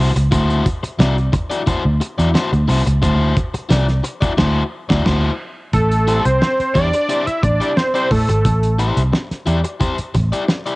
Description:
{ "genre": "funk", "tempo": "89 BPM", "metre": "4/4", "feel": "straight", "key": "A dorian", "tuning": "A4 = 440 Hz", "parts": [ { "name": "crunchy overdriven guitar", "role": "accompaniment", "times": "0.0-10.8 s", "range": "E4 to D5", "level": "-22 LUFS", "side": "left 3 dB", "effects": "cassette tape" }, { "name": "vintage muted fingered electric bass", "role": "bass", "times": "0.0-10.3 s", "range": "G#1 to A2", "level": "-16 LUFS", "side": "equal", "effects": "none" }, { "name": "cloth-damped thuddy drum kit", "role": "drums", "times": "0.2-10.8 s", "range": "crash cymbal, hi-hat, kick drum, snare drum", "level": "-19 LUFS", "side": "equal", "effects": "cassette tape" }, { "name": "fat analog lead", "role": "melody", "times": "5.7-8.8 s", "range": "A4 to E5", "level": "-17 LUFS", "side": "right 1 dB", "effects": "chorus, cassette tape" } ], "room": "small room ambience", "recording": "home recording on cassette, nothing above 10.4 kHz", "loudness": "-14 LUFS", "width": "side -22 dB against mid", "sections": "0.0-5.7 A section; 5.7-10.8 B section", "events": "band accent 4.4-5.7", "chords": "0.0 D9; 5.7 Am7" }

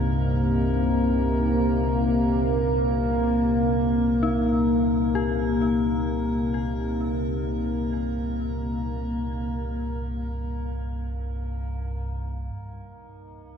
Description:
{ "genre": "dark ambient drone", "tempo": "free time", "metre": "none", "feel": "none", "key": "C minor", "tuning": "A4 = 441 Hz", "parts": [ { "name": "dark analog pad", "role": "sustained chords", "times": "0.0-12.5 s", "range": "C3 to Eb4", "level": "-24 LUFS", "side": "left 1 dB", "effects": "chorus" }, { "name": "dark detuned synth bell", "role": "arpeggios", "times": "0.0-12.6 s", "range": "Eb4 to G4", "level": "-33 LUFS", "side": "left 3 dB", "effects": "chorus, tremolo, ping-pong delay" }, { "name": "deep rumbling drone", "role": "drone", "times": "0.0-13.6 s", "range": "C2 to G2", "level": "-28 LUFS", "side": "equal", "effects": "built-in reverb" }, { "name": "metallic inharmonic drone", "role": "texture", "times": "0.0-13.6 s", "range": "Bb3 to Bb4", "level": "-35 LUFS", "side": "right 2 dB", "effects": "chorus, built-in reverb" } ], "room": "wet cathedral reverb, RT60 7.0 s", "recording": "none", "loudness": "-22 LUFS", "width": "side -7 dB against mid", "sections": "0.0-12.5 A section; 12.5-13.6 B section", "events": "fade-out on synth drone 0.0-12.5; filter sweep on synth drone 12.5-13.6", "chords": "0.0 Cm7; 12.5 Cm" }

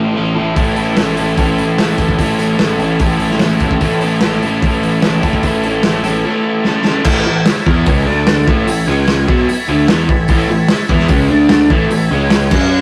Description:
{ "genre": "garage rock duo or trio", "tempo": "148 BPM", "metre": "4/4", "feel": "straight", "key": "A major", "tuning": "A4 = 440 Hz", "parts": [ { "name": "crunchy overdriven guitar", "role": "riff", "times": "0.0-12.8 s", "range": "A2 to A4", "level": "-17 LUFS", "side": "equal", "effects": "none" }, { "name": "growling picked electric bass", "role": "bass", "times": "0.0-12.8 s", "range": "A1 to F#2", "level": "-23 LUFS", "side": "equal", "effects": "overdrive" }, { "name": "overdriven combo organ", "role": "sustained chords", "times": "0.5-12.8 s", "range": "C#4 to A5", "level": "-24 LUFS", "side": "equal", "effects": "none" }, { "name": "crunchy breakbeat drum kit", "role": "drums", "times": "0.6-12.6 s", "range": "crash cymbal, hi-hat, kick drum, snare drum", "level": "-18 LUFS", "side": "equal", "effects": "none" } ], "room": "light reverb", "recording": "rough rehearsal-room recording, warm saturation", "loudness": "-13 LUFS", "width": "mono", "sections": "0.0-7.1 A section; 7.1-12.8 B section", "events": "transistor combo organ fill 6.4-7.1; drum fill 6.7-7.1", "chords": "0.0 A; 8.1 D5; 8.5 A; 8.9 C#5; 9.3 A; 11.3 D5; 11.7 A; 12.1 C#5" }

